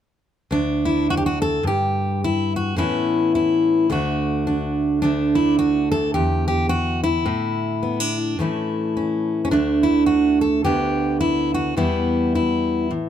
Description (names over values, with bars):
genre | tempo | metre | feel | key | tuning
folk, solo fingerstyle acoustic guitar | 107 BPM | 4/4 | swing 58% on 8ths | D major | A4 = 440 Hz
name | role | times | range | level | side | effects
fingerpicked steel-string acoustic guitar | solo | 0.5-13.1 s | D2 to A4 | -18 LUFS | equal | none
room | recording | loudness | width
light reverb | close, detailed microphones | -18 LUFS | side -10 dB against mid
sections
0.5-13.1 A section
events
none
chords
0.5 N.C.; 2.8 Aadd9; 3.9 D; 5.0 Dadd9; 6.1 Em9; 7.3 Asus4; 8.4 A; 9.5 D5; 10.6 G/D; 11.8 Em